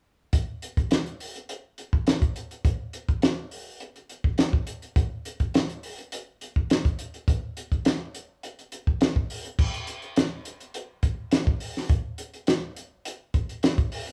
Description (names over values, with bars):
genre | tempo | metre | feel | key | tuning
blues | 104 BPM | 4/4 | straight | none | none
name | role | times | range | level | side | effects
warm soul drum kit | drums | 0.3-14.1 s | crash cymbal, hi-hat, kick drum, snare drum | -26 LUFS | equal | none
room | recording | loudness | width
moderate studio reverb, RT60 0.6 s | band playing live in one room | -27 LUFS | mono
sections
0.3-9.6 A section; 9.6-14.1 B section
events
none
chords
none